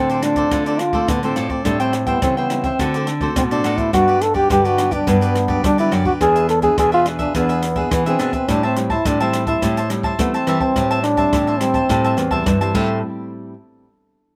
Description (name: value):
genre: samba and choro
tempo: 106 BPM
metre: 4/4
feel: straight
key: A minor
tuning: A4 = 440 Hz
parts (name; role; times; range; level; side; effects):
- mellow trombone; melody; 0.0-13.0 s; A3 to A4; -21 LUFS; equal; none
- cavaquinho; accompaniment; 0.0-13.0 s; D4 to A5; -27 LUFS; equal; none
- nylon-string guitar; accompaniment; 0.0-13.5 s; G2 to G#4; -28 LUFS; equal; slapback echo
- nylon-string guitar; bass; 0.0-13.0 s; E2 to A3; -24 LUFS; equal; none
- open jazz drum kit; drums; 0.1-12.9 s; crash cymbal, hi-hat, kick drum, rim click; -28 LUFS; equal; none
room: little or no reverb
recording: recorded outdoors, with no room sound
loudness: -18 LUFS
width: mono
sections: 0.0-13.0 A section; 13.0-14.4 B section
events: none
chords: 0.0 Dm7; 1.7 Am7; 2.8 D7; 3.9 Gmaj7; 6.2 E7; 8.5 Am7; 13.0 N.C.